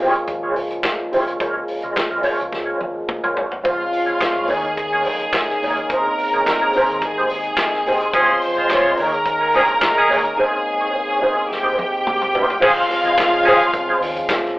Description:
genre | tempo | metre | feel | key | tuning
disco | 107 BPM | 4/4 | straight | unclear | A4 = 440 Hz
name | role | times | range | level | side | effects
mellow electric guitar | accompaniment | 0.0-14.5 s | Ab3 to Eb5 | -20 LUFS | equal | wah, tremolo
dark French horn section | sustained chords | 0.0-14.6 s | C3 to G4 | -25 LUFS | equal | none
fingered electric bass | bass | 0.2-14.5 s | F1 to Bb2 | -41 LUFS | equal | none
vintage drum kit | drums | 0.2-14.5 s | crash cymbal, handclaps, hi-hat, kick drum, snare drum, toms | -24 LUFS | equal | none
clear studio string section | second line | 3.6-14.6 s | F4 to C6 | -20 LUFS | equal | none
warm horn section | stabs | 8.1-13.6 s | Eb3 to Db5 | -17 LUFS | equal | none
room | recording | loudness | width
wet studio reverb, RT60 0.6 s | band playing live in one room, telephone sound | -16 LUFS | side -19 dB against mid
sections
0.0-3.6 A section; 3.6-12.6 B section; 12.6-14.6 C section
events
drum fill 2.5-3.6, 11.5-12.6; break 10.4-12.6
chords
0.0 Bbm7; 1.4 Db6; 3.6 Dbmaj7; 4.5 Eb7sus4; 5.9 Bbm11; 7.0 Abmaj9; 8.1 Dbmaj7; 9.0 Eb7sus4; 10.4 Bbm11; 11.5 Abmaj9; 12.6 Dbmaj7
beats
0.28 0.84 | 1.40 1.96 2.52 3.09 | 3.65 4.21 4.77 5.33 | 5.89 6.46 7.02 7.58 | 8.14 8.70 9.26 9.82 | 10.38 10.94 11.50 12.06 | 12.62 13.17 13.73 14.29

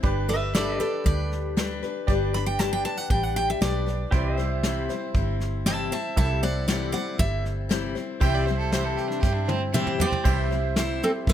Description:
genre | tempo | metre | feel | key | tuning
honky-tonk and classic country | 117 BPM | 4/4 | straight | unclear | A4 = 442 Hz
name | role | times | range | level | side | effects
bright upright piano | accompaniment | 0.0-11.3 s | D4 to D5 | -37 LUFS | right 9 dB | none
picked steel-string acoustic guitar | accompaniment | 0.0-11.3 s | C3 to C5 | -30 LUFS | left 8 dB | none
vintage muted fingered electric bass | bass | 0.0-11.3 s | G1 to G2 | -28 LUFS | right 1 dB | none
soft brush drum kit | drums | 0.0-11.3 s | crash cymbal, hi-hat, kick drum, snare drum, toms | -27 LUFS | equal | none
picked steel-string acoustic guitar | melody | 0.3-11.3 s | C4 to B5 | -28 LUFS | right 2 dB | none
pedal steel guitar | sustained chords | 0.5-11.3 s | G4 to E5 | -35 LUFS | right 4 dB | none
clear fiddle | second line | 8.2-10.2 s | C4 to G5 | -31 LUFS | right 5 dB | none
room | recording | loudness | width
light reverb | close, detailed microphones | -23 LUFS | side -10 dB against mid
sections
0.0-8.2 A section; 8.2-10.3 B section; 10.3-11.3 C section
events
steel-string acoustic guitar solo 0.0-8.2; drum fill 9.2-10.3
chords
0.0 G; 4.1 C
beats
| 0.03 0.55 1.06 1.57 | 2.08 2.59 3.10 3.61 | 4.12 4.63 5.14 5.66 | 6.17 6.68 7.19 7.70 | 8.21 8.72 9.23 9.74 | 10.25 10.76 11.27

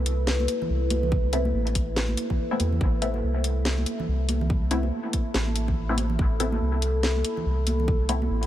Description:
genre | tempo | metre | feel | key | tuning
deep dubstep | 142 BPM | 4/4 | swing 60% on 16ths, half-time | A minor | A4 = 440 Hz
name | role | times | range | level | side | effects
overtone-sweeping drone | sustained chords | 0.0-8.5 s | A3 to B4 | -31 LUFS | left 2 dB | chorus, built-in reverb, phaser
soft dub sub bass | bass | 0.0-8.5 s | A1 to E2 | -25 LUFS | equal | none
garage drum kit | drums | 0.1-8.5 s | hi-hat, snare drum | -30 LUFS | equal | none
congas | percussion | 0.4-8.3 s | none | -32 LUFS | right 4 dB | dub echo
electronic kick drum | drums | 1.1-8.0 s | none | -25 LUFS | equal | none
filtered dub chord stab | stabs | 1.3-8.3 s | A3 to E4 | -33 LUFS | left 2 dB | phaser, lush chorus, dub echo
room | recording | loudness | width
light reverb, digital ambience | none | -23 LUFS | side -12 dB against mid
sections
0.0-8.5 A section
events
none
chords
0.0 Amadd9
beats
0.27 0.70 | 1.12 1.54 1.96 2.39 | 2.81 3.23 3.65 4.08 | 4.50 4.92 5.34 5.77 | 6.19 6.61 7.03 7.46 | 7.88 8.30

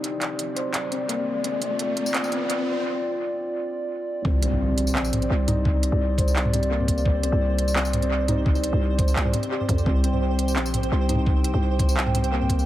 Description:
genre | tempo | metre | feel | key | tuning
half-time drum and bass | 171 BPM | 4/4 | swing 53% on 16ths, half-time | C minor | A4 = 441 Hz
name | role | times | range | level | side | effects
dark analog pad | sustained chords | 0.0-12.7 s | C4 to G5 | -28 LUFS | equal | wide subtle chorus, sidechain pumping
felt-muted upright piano | arpeggios | 0.0-12.7 s | Bb3 to C5 | -30 LUFS | left 4 dB | analog delay
industrial drum kit | drums | 0.0-12.7 s | handclaps, hi-hat, tambourine, toms | -28 LUFS | right 1 dB | high-pass filter on hats, high-pass filter on snare, high-pass filter on toms, high-pass filter on perc, tape echo
riser and impact | sound effects | 0.0-5.7 s | none | -34 LUFS | right 1 dB | none
growling 808-style bass | bass | 4.2-12.7 s | Bb1 to F2 | -24 LUFS | equal | none
electronic kick drum | drums | 4.2-12.6 s | none | -22 LUFS | equal | none
pulsing gated texture | texture | 4.4-12.7 s | C5 | -35 LUFS | right 10 dB | chorus, built-in reverb
room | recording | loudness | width
light reverb | echo-heavy mix, high-pass filter | -21 LUFS | side -14 dB against mid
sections
0.0-4.2 A section; 4.2-12.7 B section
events
build-up 0.0-4.2; riser 0.0-2.8; filter sweep 0.0-4.2; break 2.8-4.2; drop 4.2-12.7; impact 4.2-5.7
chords
0.0 Cmadd9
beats
| 0.04 0.39 0.74 1.09 | 1.44 1.79 2.14 2.50 | 2.85 3.20 3.55 3.90 | 4.25 4.60 4.95 5.30 | 5.65 6.00 6.36 6.71 | 7.06 7.41 7.76 8.11 | 8.46 8.81 9.16 9.51 | 9.86 10.21 10.56 10.92 | 11.27 11.62 11.97 12.32

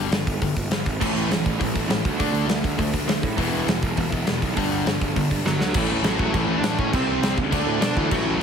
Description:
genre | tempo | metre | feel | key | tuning
punk rock | 203 BPM | 4/4 | straight | unclear | A4 = 440 Hz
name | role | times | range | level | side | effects
distorted electric guitar | riff | 0.0-8.4 s | E2 to D4 | -27 LUFS | left 11 dB | overdrive
fuzz picked electric bass | bass | 0.0-8.4 s | E1 to B2 | -28 LUFS | right 1 dB | overdrive
big rock drum kit | drums | 0.1-8.2 s | crash cymbal, hi-hat, kick drum, snare drum | -24 LUFS | right 1 dB | none
raw garage guitar | riff | 1.0-8.4 s | E2 to D4 | -29 LUFS | right 15 dB | overdrive
thick fuzz guitar | riff | 1.0-8.4 s | G2 to F#4 | -29 LUFS | right 1 dB | distortion
high-gain lead guitar | melody | 5.5-8.4 s | E3 to D5 | -26 LUFS | equal | distortion, tape echo
room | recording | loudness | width
light reverb | heavily compressed radio sound | -20 LUFS | side -7 dB against mid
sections
0.0-5.7 A section; 5.7-8.4 B section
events
drum fill 5.5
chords
0.0 G5; 1.0 A; 2.0 D; 3.4 E; 4.6 G; 5.7 A; 6.9 C; 7.4 D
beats
0.12 0.41 0.71 | 1.01 1.30 1.60 1.90 | 2.19 2.49 2.79 3.08 | 3.38 3.68 3.97 4.27 | 4.56 4.86 5.16 5.45 | 5.75 6.04 6.34 6.63 | 6.93 7.22 7.51 7.81 | 8.10 8.40

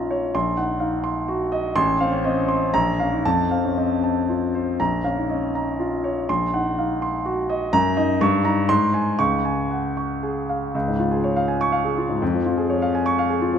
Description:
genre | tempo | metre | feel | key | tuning
classical, virtuoso piano study | 113-128 BPM | 3/4 | rubato | Db major from 7.7 s | A4 = 443 Hz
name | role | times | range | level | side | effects
warm concert grand piano | solo | 0.0-13.6 s | A1 to Db6 | -19 LUFS | equal | none
room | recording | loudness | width
wet concert hall reverb, RT60 2.1 s | none | -19 LUFS | side -8 dB against mid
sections
0.0-10.7 A section; 10.7-13.6 B section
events
none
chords
0.3 Cm7b5/Bb; 1.8 F/A; 2.7 Bbm; 3.2 F; 4.8 Bbm; 6.3 Cm7b5/Bb; 7.7 Ebm/Gb; 8.2 Eb7/G; 8.7 Ab; 9.2 Db; 12.2 Db/F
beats
| 0.34 0.81 1.28 | 1.76 2.24 2.74 | 3.25 3.77 4.28 | 4.79 5.29 5.79 | 6.28 6.77 7.24 | 7.72 8.20 8.68 | 9.19 9.70 10.22 | 10.74 11.24 11.72 | 12.21 12.70 13.19

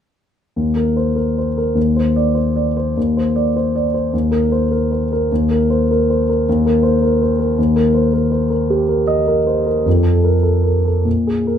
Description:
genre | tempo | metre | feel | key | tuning
classical, impressionist solo piano | 77 BPM | 3/4 | uneven beats, rubato | unclear | A4 = 440 Hz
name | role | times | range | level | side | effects
warm concert grand piano | solo | 0.6-11.6 s | Eb2 to Eb5 | -14 LUFS | equal | none
room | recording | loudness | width
moderate large studio reverb, RT60 0.8 s | minimal, uncompressed stereo recording | -14 LUFS | side -9 dB against mid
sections
0.6-11.6 A section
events
none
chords
0.6 Eb5; 1.8 Cmadd9/Eb; 4.1 Eb5; 7.6 Eb6; 9.9 F; 11.1 Absus2/Bb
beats
| 0.55 1.37 2.16 | 2.96 3.75 4.52 | 5.30 6.08 6.84 | 7.58 8.32 9.09 | 9.86 10.64 11.47

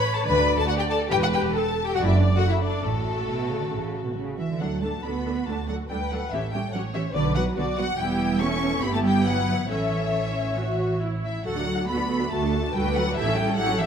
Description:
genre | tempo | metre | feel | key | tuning
quick classical-period movement for string orchestra | 141 BPM | 4/4 | straight | D major | A4 = 441 Hz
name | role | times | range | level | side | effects
warm studio violin section | melody | 0.0-13.9 s | A4 to C#6 | -29 LUFS | left 4 dB | none
warm symphonic violin section | second line | 0.0-13.9 s | A3 to C#5 | -30 LUFS | left 4 dB | none
rich chamber viola section | accompaniment | 0.0-13.9 s | B3 to D5 | -30 LUFS | right 1 dB | none
dark studio double bass section | bass | 0.3-13.9 s | E1 to D2 | -28 LUFS | right 2 dB | none
warm chamber cello section | bass | 0.3-13.9 s | D2 to C#4 | -28 LUFS | right 3 dB | none
room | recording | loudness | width
moderate recital hall reverb, RT60 1.4 s | none | -22 LUFS | side -7 dB against mid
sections
0.0-4.6 A section; 4.6-13.9 B section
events
none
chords
0.3 D5; 1.1 A5/E; 2.0 D/F#; 2.8 D/A; 3.7 A; 4.6 D; 6.3 A7; 7.1 Bm; 8.0 Em; 8.8 Em/G; 9.7 A; 11.5 D; 13.2 A7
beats
0.27 0.69 | 1.11 1.53 1.96 2.38 | 2.83 3.27 3.72 4.17 | 4.61 5.04 5.47 5.89 | 6.31 6.73 7.15 7.57 | 7.99 8.41 8.83 9.26 | 9.70 10.14 10.57 11.01 | 11.45 11.88 12.31 12.73 | 13.16 13.59

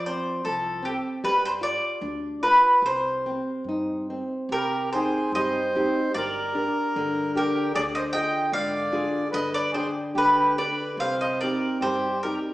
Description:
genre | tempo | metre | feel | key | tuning
fado-style ballad | 74 BPM | 2/4 | uneven beats, rubato | C minor | A4 = 440 Hz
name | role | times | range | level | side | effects
mandolin | melody | 0.0-12.3 s | G4 to G5 | -24 LUFS | equal | none
nylon-string guitar | accompaniment | 0.0-12.5 s | C3 to G5 | -28 LUFS | equal | none
upright bass | bass | 0.0-12.3 s | G1 to Ab2 | -42 LUFS | equal | none
accordion | second line | 4.5-12.4 s | G4 to Eb5 | -28 LUFS | right 1 dB | none
room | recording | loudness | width
wet large studio reverb, RT60 1.2 s | band playing live in one room, small speaker sound | -22 LUFS | side -17 dB against mid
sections
0.0-4.5 A section; 4.5-12.5 A section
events
none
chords
0.0 F5; 1.2 G5; 2.8 Cm; 6.2 Gm; 7.7 Ddim; 9.3 G; 11.0 Cm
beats
0.46 | 1.25 2.03 | 2.84 3.67 | 4.50 5.34 | 6.16 6.96 | 7.74 8.52 | 9.32 10.14 | 10.98 11.81

